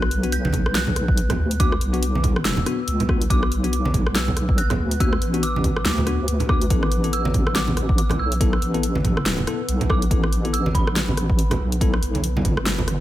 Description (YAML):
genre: deep dubstep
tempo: 141 BPM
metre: 4/4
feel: swing 58% on 16ths, half-time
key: B minor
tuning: A4 = 440 Hz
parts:
  - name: dark detuned synth bell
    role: melody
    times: 0.0-13.0 s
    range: B5 to G6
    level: -30 LUFS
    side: right 2 dB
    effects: chorus, dub echo
  - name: dark analog pad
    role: sustained chords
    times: 0.0-13.0 s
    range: B3 to B4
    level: -33 LUFS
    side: left 3 dB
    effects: lush chorus
  - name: bell-like tine electric piano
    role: stabs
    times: 0.0-11.9 s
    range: B3 to A4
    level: -30 LUFS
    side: left 5 dB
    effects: dub echo
  - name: deep soft wobble bass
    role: bass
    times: 0.0-13.0 s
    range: G1 to D2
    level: -23 LUFS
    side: equal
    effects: chorus
  - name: deep house drum kit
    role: drums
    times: 0.0-13.0 s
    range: hi-hat, rim click, snare drum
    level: -26 LUFS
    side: equal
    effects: studio reverb
  - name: congas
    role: percussion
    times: 0.4-12.9 s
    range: none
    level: -27 LUFS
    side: right 3 dB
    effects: none
  - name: electronic kick drum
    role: drums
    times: 0.5-12.5 s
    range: none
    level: -22 LUFS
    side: equal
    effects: studio reverb
room: digital ambience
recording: none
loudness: -18 LUFS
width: side -14 dB against mid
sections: 0.0-13.0 A section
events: none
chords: 0.0 Bm; 6.7 Asus2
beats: 0.32 0.75 1.17 | 1.60 2.02 2.45 2.88 | 3.30 3.73 4.15 4.58 | 5.00 5.43 5.85 6.28 | 6.71 7.13 7.56 7.98 | 8.41 8.83 9.26 9.68 | 10.11 10.54 10.96 11.39 | 11.81 12.24 12.66